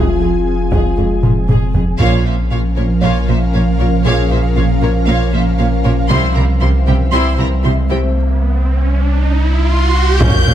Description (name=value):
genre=cinematic, hybrid orchestral and electronic film score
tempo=117 BPM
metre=4/4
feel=straight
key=unclear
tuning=A4 = 441 Hz
part: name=dark symphonic viola section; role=accompaniment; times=0.0-10.5 s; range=G3 to Ab4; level=-24 LUFS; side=right 2 dB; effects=none
part: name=dark French horn section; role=sustained chords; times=0.0-10.5 s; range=E3 to F4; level=-24 LUFS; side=left 4 dB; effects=none
part: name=ethereal airy pad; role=sustained chords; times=0.0-10.5 s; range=F3 to Ab5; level=-20 LUFS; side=right 1 dB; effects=ensemble chorus, built-in reverb, tremolo
part: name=punchy sub bass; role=bass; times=0.0-10.5 s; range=F1 to C2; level=-15 LUFS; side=equal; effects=none
part: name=rich symphonic cello section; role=bass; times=0.0-10.5 s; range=F2 to C3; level=-21 LUFS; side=right 2 dB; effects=none
part: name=warm grand piano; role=texture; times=0.0-10.2 s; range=Ab3 to E5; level=-29 LUFS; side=left 2 dB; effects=ping-pong delay
part: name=solo taiko drums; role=drums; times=0.7-3.0, 6.1-7.1, 10.2-10.5 s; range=none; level=-17 LUFS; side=equal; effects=none
part: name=warm symphonic violin section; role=second line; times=2.0-10.5 s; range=G4 to C6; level=-22 LUFS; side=left 2 dB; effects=none
part: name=warm symphonic double bass section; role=bass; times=2.0-10.5 s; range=Bb1 to C2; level=-20 LUFS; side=right 2 dB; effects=none
part: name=riser and sub drop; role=sound effects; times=7.8-10.5 s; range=none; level=-20 LUFS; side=right 2 dB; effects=none
part: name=warm symphonic violin section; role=melody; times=9.7-10.5 s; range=C6 to G6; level=-18 LUFS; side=left 1 dB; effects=none
room=light reverb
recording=close, detailed microphones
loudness=-12 LUFS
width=side -11 dB against mid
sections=0.0-2.0 A section; 2.0-10.2 B section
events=drum fill 1.2-2.0, 9.4-10.2; band accent 2.0-2.5; riser 7.8-10.2; impact 10.2-10.5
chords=0.0 Fm; 2.0 Bbm; 6.1 C